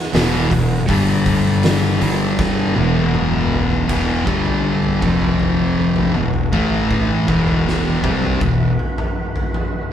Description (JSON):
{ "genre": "stoner and doom metal", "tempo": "80 BPM", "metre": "4/4", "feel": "straight", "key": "E minor", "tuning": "A4 = 435 Hz", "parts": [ { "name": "tonewheel organ", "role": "sustained chords", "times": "0.0-9.9 s", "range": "E3 to B4", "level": "-30 LUFS", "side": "right 3 dB", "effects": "slow rotary speaker, overdrive" }, { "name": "thick fuzz guitar", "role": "riff", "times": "0.1-8.7 s", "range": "E2 to C4", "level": "-19 LUFS", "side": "left 6 dB", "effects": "distortion" }, { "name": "thick fuzz guitar", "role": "riff", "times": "0.1-8.7 s", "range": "E2 to C4", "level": "-21 LUFS", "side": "right 5 dB", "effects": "distortion" }, { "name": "fuzz fingered electric bass", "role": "bass", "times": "0.1-8.8 s", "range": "E1 to C2", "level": "-23 LUFS", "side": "equal", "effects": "overdrive" }, { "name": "oversized low-tuned drum kit", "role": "drums", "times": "0.1-9.7 s", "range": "crash cymbal, hi-hat, kick drum, snare drum, toms", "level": "-21 LUFS", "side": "equal", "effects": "none" } ], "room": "light reverb", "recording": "band playing live in one room", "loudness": "-15 LUFS", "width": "side -9 dB against mid", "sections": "0.0-3.9 A section; 3.9-9.9 B section", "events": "drum fill 2.4-3.9", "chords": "0.0 E5; 0.9 G5; 2.8 E5; 4.3 G5; 5.0 F5; 6.2 E5; 6.5 A5; 7.3 Em" }